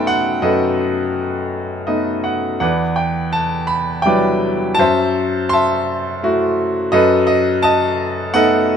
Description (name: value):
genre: classical, lyrical solo piano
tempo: 84 BPM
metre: 3/4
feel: rubato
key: unclear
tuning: A4 = 441 Hz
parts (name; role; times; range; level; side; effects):
- bright grand piano; solo; 0.0-8.8 s; E2 to C6; -14 LUFS; equal; none
room: moderate recital hall reverb, RT60 1.5 s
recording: close, detailed microphones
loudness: -15 LUFS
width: side -8 dB against mid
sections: 0.0-8.8 A section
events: grand piano fill 1.5-2.6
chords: 0.0 B7/F#; 2.6 Em9; 4.8 F#m7b5; 6.9 B7/F#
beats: | 0.43 1.15 1.88 | 2.62 3.35 4.07 | 4.79 5.52 6.23 | 6.93 7.63 8.33